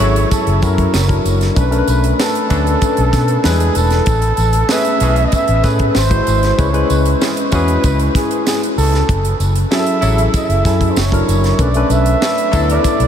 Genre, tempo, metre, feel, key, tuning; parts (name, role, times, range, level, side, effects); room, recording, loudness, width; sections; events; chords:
polished 1980s jazz-funk pop; 96 BPM; 4/4; straight; F# minor; A4 = 440 Hz
breathy flugelhorn; melody; 0.0-13.1 s; G#4 to E5; -19 LUFS; right 2 dB
mellow horn section; second line; 0.0-12.9 s; E3 to A4; -28 LUFS; equal
barky tine electric piano; accompaniment; 0.0-13.1 s; F#3 to B#4; -18 LUFS; left 2 dB; overdrive, wide subtle chorus
vintage muted fingered electric bass; bass; 0.0-13.1 s; E1 to B2; -15 LUFS; equal
tight funk drum kit; drums; 0.0-13.1 s; hi-hat, kick drum, snare drum; -20 LUFS; equal
tambourine; percussion; 0.0-13.0 s; -31 LUFS; right 7 dB
moderate huge ambient reverb, RT60 8.1 s; dreamy mix soaked in reverb; -12 LUFS; side -9 dB against mid
0.0-13.1 A section
0.0 F#m7; 0.9 F#7b13; 1.6 Bm9; 3.4 E7; 4.1 Amaj9; 6.0 G#7b13; 6.6 C#m7; 9.1 F#m7; 11.0 F#7b13; 11.6 Bm9